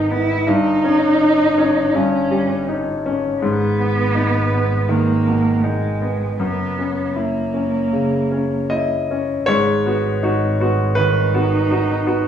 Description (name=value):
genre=neoclassical piano and strings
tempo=81 BPM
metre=4/4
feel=rubato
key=G# minor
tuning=A4 = 439 Hz
part: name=muted cello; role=second line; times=0.0-12.3 s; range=G#3 to E4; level=-20 LUFS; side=right 2 dB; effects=none
part: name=bright concert grand piano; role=accompaniment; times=0.0-12.3 s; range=F#2 to D#5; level=-19 LUFS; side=left 1 dB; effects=none
part: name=muted double bass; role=bass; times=0.0-12.3 s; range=F#1 to G#1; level=-24 LUFS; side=right 1 dB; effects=none
room=moderate large studio reverb, RT60 1.1 s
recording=band playing live in one room, studio reverb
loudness=-16 LUFS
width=side -9 dB against mid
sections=0.0-9.5 A section; 9.5-12.3 B section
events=none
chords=0.5 D#7/G; 3.4 G#m; 6.4 F#7; 9.5 G#m7